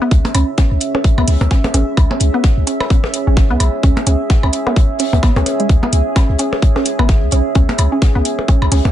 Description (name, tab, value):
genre	minimal techno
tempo	129 BPM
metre	4/4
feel	swing 58% on 16ths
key	C# minor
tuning	A4 = 439 Hz
part	resonant blip pluck	riff	0.0-8.8 s	G#3 to C#4	-21 LUFS	right 1 dB	chorus, sidechain pumping, digital delay
part	deep dark ambient pad	texture	0.0-8.9 s	C#4 to E5	-21 LUFS	right 2 dB	chorus, built-in reverb, sidechain pumping
part	punchy sub bass	bass	0.1-8.9 s	G#1 to C#2	-14 LUFS	equal	sidechain pumping
part	electronic kick drum	drums	0.1-8.6 s	none	-12 LUFS	equal	none
part	open jazz drum kit	drums	0.1-8.9 s	hi-hat, snare drum	-30 LUFS	left 4 dB	sidechain pumping on hats, high-pass filter on hats, high-pass filter on snare, high-pass filter on room
part	percussion blips	percussion	0.2-8.9 s	none	-22 LUFS	left 1 dB	overdrive, dub echo
part	electronic hi-hat	drums	0.3-8.8 s	none	-20 LUFS	right 2 dB	overdrive
room	digital ambience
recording	nothing above 10.6 kHz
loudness	-12 LUFS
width	side -12 dB against mid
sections	0.0-8.9 A section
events	none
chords	0.0 C#m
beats	| 0.11 0.58 1.04 1.51 | 1.97 2.44 2.90 3.37 | 3.83 4.30 4.76 5.23 | 5.69 6.16 6.62 7.09 | 7.55 8.02 8.48